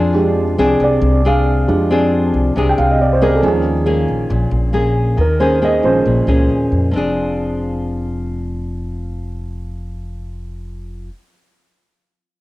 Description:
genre	bossa nova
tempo	137 BPM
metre	4/4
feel	straight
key	F minor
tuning	A4 = 440 Hz
part	nylon-string guitar	accompaniment	0.0-11.1 s	Bb2 to Ab4	-18 LUFS	left 1 dB	cassette tape
part	upright bass	bass	0.0-11.1 s	F1 to F2	-19 LUFS	equal	none
part	warm grand piano	accompaniment	0.1-7.0 s	F3 to G5	-18 LUFS	right 2 dB	cassette tape
room	moderate spring reverb, RT60 2.5 s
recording	home recording on cassette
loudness	-13 LUFS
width	side -17 dB against mid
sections	0.0-6.9 A section; 6.9-10.4 B section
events	grand piano solo 0.0-6.9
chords	0.0 Fm6; 3.4 Eb7sus4; 6.9 Fm6

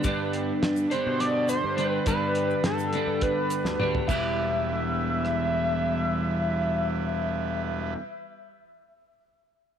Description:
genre	psychedelic rock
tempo	208 BPM (eighths)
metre	7/8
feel	straight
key	E minor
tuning	A4 = 444 Hz
part	overdriven combo organ	sustained chords	0.0-7.9 s	G3 to B5	-37 LUFS	right 10 dB	none
part	twelve-string electric guitar	riff	0.0-8.0 s	G2 to E4	-28 LUFS	left 1 dB	flanger, double-tracked left and right
part	fuzz picked electric bass	bass	0.0-7.9 s	E1 to B2	-32 LUFS	equal	overdrive
part	cloth-damped thuddy drum kit	drums	0.0-5.4 s	crash cymbal, hi-hat, kick drum, rim click, snare drum, toms	-30 LUFS	equal	none
part	egg shaker	percussion	0.0-4.4 s	none	-45 LUFS	left 15 dB	none
part	overdriven synth lead	melody	0.9-7.9 s	A4 to E5	-28 LUFS	equal	distortion, chorus, tape echo
room	moderate echo chamber reverb, RT60 2.1 s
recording	1960s-style stereo with parts hard left and right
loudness	-24 LUFS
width	side -8 dB against mid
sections	0.0-4.1 A section; 4.1-8.1 B section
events	drum fill 3.7-4.1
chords	0.0 G; 4.1 Em

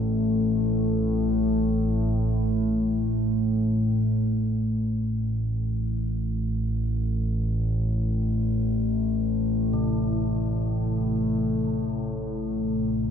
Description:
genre	dark ambient drone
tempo	free time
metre	none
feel	none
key	A minor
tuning	A4 = 440 Hz
part	bronze singing bowl	arpeggios	0.0-2.1, 9.7-13.1 s	C3 to A4	-35 LUFS	left 2 dB	diffuse ambient delay
part	analog drone	drone	0.0-13.1 s	A1 to A2	-23 LUFS	equal	chorus
room	wet cathedral reverb, RT60 5.7 s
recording	dark, warm production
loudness	-23 LUFS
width	side -8 dB against mid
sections	0.0-13.1 A section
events	fade-in on singing bowl 0.0-13.1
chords	0.0 Am

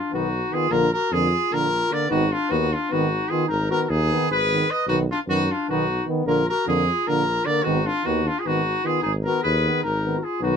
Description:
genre	balkan folk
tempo	303 BPM (eighths)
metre	7/8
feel	straight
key	Ab dorian sharp4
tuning	A4 = 441 Hz
part	clear trumpet	melody	0.0-10.6 s	F4 to Eb5	-23 LUFS	equal	none
part	mellow clarinet	second line	0.0-10.6 s	D4 to Cb5	-29 LUFS	left 5 dB	none
part	clear trombone	accompaniment	0.1-10.6 s	Bb3 to B3	-28 LUFS	left 8 dB	none
part	mellow euphonium	accompaniment	0.1-10.6 s	D3 to D#3	-27 LUFS	right 8 dB	none
part	mellow tuba	bass	0.1-10.6 s	Ab1 to F#2	-26 LUFS	equal	none
room	little or no reverb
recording	close, detailed microphones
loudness	-20 LUFS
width	side -7 dB against mid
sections	0.0-10.4 A section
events	none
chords	0.0 B; 0.7 Bb; 2.1 Abm; 4.9 B; 6.3 Bb; 7.6 Abm

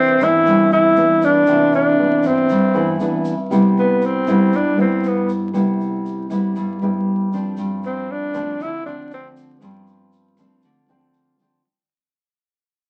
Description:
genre	bossa nova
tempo	118 BPM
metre	4/4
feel	straight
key	C major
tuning	A4 = 439 Hz
part	breathy tenor saxophone	melody	0.0-9.3 s	B3 to E4	-18 LUFS	equal	none
part	nylon-string guitar	accompaniment	0.0-11.6 s	G2 to E4	-21 LUFS	equal	none
part	vibraphone with medium mallets	accompaniment	0.0-3.5 s	C4 to E5	-26 LUFS	equal	none
part	upright bass	bass	0.0-11.6 s	G1 to G2	-42 LUFS	equal	none
part	egg shaker	percussion	0.2-11.6 s	none	-53 LUFS	equal	none
room	moderate large studio reverb, RT60 0.9 s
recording	very old 78 rpm record, vinyl crackle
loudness	-17 LUFS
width	mono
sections	0.0-3.5 A section; 3.5-11.6 B section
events	fade-out 3.5-11.6; tenor saxophone solo 3.5-11.6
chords	0.0 Cmaj9; 3.5 Cmaj7; 7.6 G7sus4

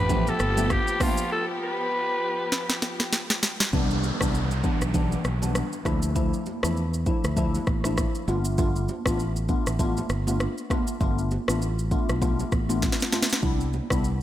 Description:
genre	afrobeats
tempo	99 BPM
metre	4/4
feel	swing 58% on 16ths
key	unclear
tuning	A4 = 440 Hz
part	growling alto saxophone	melody	0.0-2.8 s	F4 to B4	-27 LUFS	equal	digital delay
part	warm studio string section	sustained chords	0.0-3.7 s	F3 to G4	-32 LUFS	left 2 dB	none
part	fingered electric bass	bass	0.0-14.2 s	G1 to E2	-27 LUFS	equal	none
part	glassy digital keys	accompaniment	0.1-14.1 s	E3 to F4	-29 LUFS	left 2 dB	chorus
part	afro-pop drum kit	drums	0.1-14.2 s	hi-hat, kick drum, rim click, shaker, snare drum	-26 LUFS	equal	none
part	congas	percussion	0.1-13.9 s	none	-37 LUFS	right 7 dB	none
part	downlifter	sound effects	3.7-8.6 s	none	-35 LUFS	equal	none
room	light reverb, digital ambience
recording	none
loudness	-23 LUFS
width	side -13 dB against mid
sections	0.0-3.7 A section; 3.7-14.2 B section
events	break 1.3-3.7; drum fill 2.5-3.7, 12.8-13.4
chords	0.0 G7; 3.7 Cmaj7; 5.9 Dmadd9; 8.3 G7; 13.4 Cmaj7

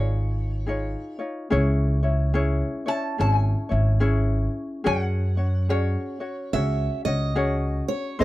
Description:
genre	Hawaiian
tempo	72 BPM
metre	4/4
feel	swing 62% on 8ths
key	C# minor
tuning	A4 = 440 Hz
part	lap resonator guitar	melody	0.0-7.0 s	Db5 to A5	-30 LUFS	left 1 dB	none
part	ukulele	accompaniment	0.0-8.2 s	B#3 to D#5	-27 LUFS	left 2 dB	none
part	upright bass	bass	0.0-8.2 s	Ab1 to G#2	-22 LUFS	equal	none
part	fingerpicked steel-string acoustic guitar	second line	6.5-8.2 s	B#4 to E5	-28 LUFS	right 4 dB	none
room	little or no reverb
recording	dry, close 1970s-style studio recording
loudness	-22 LUFS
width	side -16 dB against mid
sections	0.0-1.5 A section; 1.5-8.2 B section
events	none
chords	0.0 Dbadd9; 1.5 C#m; 4.9 F#sus2

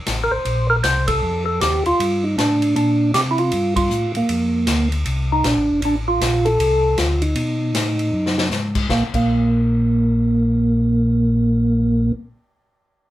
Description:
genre	soul jazz organ trio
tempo	156 BPM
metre	4/4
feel	swing 63% on 8ths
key	Bb major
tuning	A4 = 440 Hz
part	mellow tonewheel organ	bass	0.1-12.1 s	F1 to C3	-21 LUFS	left 1 dB	chorus vibrato, slow rotary speaker
part	swinging big-band drum kit	drums	0.1-9.2 s	crash cymbal, hi-hat, kick drum, ride cymbal, snare drum	-25 LUFS	left 2 dB	none
part	percussive tonewheel organ	melody	0.2-12.1 s	Bb3 to C5	-18 LUFS	right 1 dB	slow rotary speaker
room	moderate studio ambience, RT60 0.5 s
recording	heard from further back in the room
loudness	-16 LUFS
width	side -14 dB against mid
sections	0.0-5.8 A section; 5.8-8.9 B section; 8.9-12.0 C section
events	band accent 1.0, 3.7; drum fill 8.1-8.5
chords	0.0 Am; 1.2 F13; 2.8 Bbmaj9; 5.8 Dm7; 7.4 B7; 8.9 N.C.

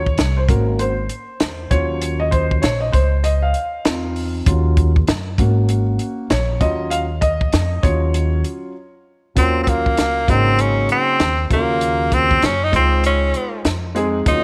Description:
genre	hip hop, jazz-hop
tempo	98 BPM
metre	4/4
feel	swing 61% on 16ths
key	Eb dorian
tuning	A4 = 440 Hz
part	dark concert grand piano	accompaniment	0.0-14.4 s	Db3 to F5	-24 LUFS	equal	none
part	upright bass	bass	0.0-14.4 s	Ab1 to Gb2	-22 LUFS	equal	none
part	compact cocktail drum kit	drums	0.1-14.4 s	hi-hat, kick drum, snare drum	-22 LUFS	equal	none
part	bright tenor saxophone	melody	9.4-14.4 s	Bb3 to Eb4	-20 LUFS	equal	none
room	light reverb, small room ambience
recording	none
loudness	-18 LUFS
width	mono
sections	0.0-9.4 A section; 9.4-14.4 B section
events	grand piano solo 0.0-9.4; break 8.8-9.4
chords	0.5 Ab7sus4; 1.7 Ebm7; 2.9 Dbmaj9; 4.5 Ebm7; 5.4 Ab7sus4; 6.6 Ebm9; 9.4 Ebm7; 10.3 Ab7sus4; 11.5 Ebm7; 12.7 Dbmaj9

